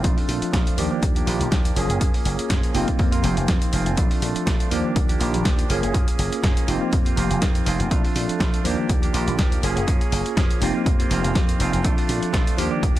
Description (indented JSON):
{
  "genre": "filtered disco house",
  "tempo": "122 BPM",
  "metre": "4/4",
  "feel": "swing 55% on 16ths",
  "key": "Bb major",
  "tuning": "A4 = 440 Hz",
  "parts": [
    { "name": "barky tine electric piano", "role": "accompaniment", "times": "0.0-13.0 s", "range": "Eb3 to A4", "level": "-26 LUFS", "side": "equal", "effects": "medium stereo tremolo, phaser, sidechain pumping, low-pass filter" },
    { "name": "direct-recorded clean electric guitar", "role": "riff", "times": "0.0-13.0 s", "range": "Eb3 to Ab4", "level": "-28 LUFS", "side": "right 5 dB", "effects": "sidechain pumping, low-pass filter" },
    { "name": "slap bass with an envelope filter", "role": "bass", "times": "0.0-13.0 s", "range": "F1 to Bb2", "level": "-26 LUFS", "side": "equal", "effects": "sidechain pumping, low-pass filter" },
    { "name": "dusty soul sampler-style drum kit", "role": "drums", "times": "0.0-13.0 s", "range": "hi-hat, snare drum", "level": "-28 LUFS", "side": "left 1 dB", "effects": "sidechain pumping on hats" },
    { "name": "electronic kick drum", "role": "drums", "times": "0.0-12.9 s", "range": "none", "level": "-21 LUFS", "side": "equal", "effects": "none" }
  ],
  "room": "little or no reverb",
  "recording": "lossy compression artefacts",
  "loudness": "-19 LUFS",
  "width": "side -14 dB against mid",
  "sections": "0.0-13.0 A section",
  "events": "filter sweep 0.0-13.0",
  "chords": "0.0 Bbmaj7; 0.8 Ebmaj9; 1.8 Gbmaj9; 2.7 F7sus4; 4.0 Bbmaj7; 4.7 Ebmaj9; 5.7 Gbmaj9; 6.7 F7sus4; 7.9 Bbmaj7; 8.6 Ebmaj9; 9.6 Gbmaj9; 10.6 F7sus4; 11.8 Bbmaj7"
}